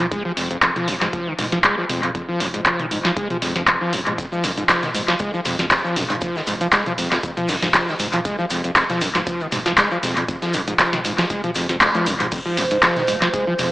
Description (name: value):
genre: acid house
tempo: 118 BPM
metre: 4/4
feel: swing 54% on 16ths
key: F minor pentatonic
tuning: A4 = 436 Hz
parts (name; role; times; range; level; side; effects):
- overdriven acid bass; riff; 0.0-13.7 s; F2 to Ab3; -23 LUFS; equal; distortion, analog chorus, sidechain pumping, tape echo
- round analog bass; bass; 0.0-13.7 s; F1; -36 LUFS; equal; sidechain pumping
- booming analog drum machine; drums; 0.0-13.7 s; crash cymbal, handclaps, hi-hat, snare drum, toms; -19 LUFS; equal; dub echo
- electronic kick drum; drums; 0.1-13.4 s; none; -31 LUFS; equal; none
- vintage drum kit; drums; 4.2-13.7 s; hi-hat, shaker, snare drum; -31 LUFS; equal; none
- maracas; percussion; 4.2-12.3 s; none; -38 LUFS; left 1 dB; none
- warbly tape-like pad; sustained chords; 12.3-13.7 s; C5; -22 LUFS; right 2 dB; chorus, built-in reverb, sidechain pumping
room: wet plate reverb, RT60 1.3 s, small room reverb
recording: echo-heavy mix, AM radio sound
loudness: -17 LUFS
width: side -18 dB against mid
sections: 0.0-12.3 A section; 12.3-13.7 B section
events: drum fill 11.8-12.3; band accent 11.8; drop 12.3-13.7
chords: 0.0 Fm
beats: | 0.12 0.62 1.13 1.64 | 2.15 2.66 3.17 3.67 | 4.18 4.69 5.20 5.71 | 6.22 6.73 7.23 7.74 | 8.25 8.76 9.27 9.78 | 10.29 10.79 11.30 11.81 | 12.32 12.83 13.34